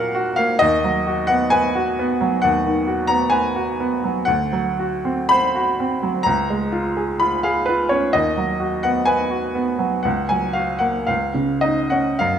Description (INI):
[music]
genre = classical, romantic nocturne for solo piano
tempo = 50-67 BPM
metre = 4/4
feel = rubato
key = unclear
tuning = A4 = 439 Hz
[part]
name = bright baby grand piano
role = solo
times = 0.0-12.4 s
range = C#2 to B5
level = -17 LUFS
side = equal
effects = none
[sound]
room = moderate recital hall reverb, RT60 1.6 s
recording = none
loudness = -17 LUFS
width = side -8 dB against mid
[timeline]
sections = 0.0-12.4 A section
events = none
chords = 0.0 F#/A#; 0.6 B/D#; 4.3 D7; 6.2 C#; 8.1 B/D#; 10.1 F#/C#; 11.1 C#add9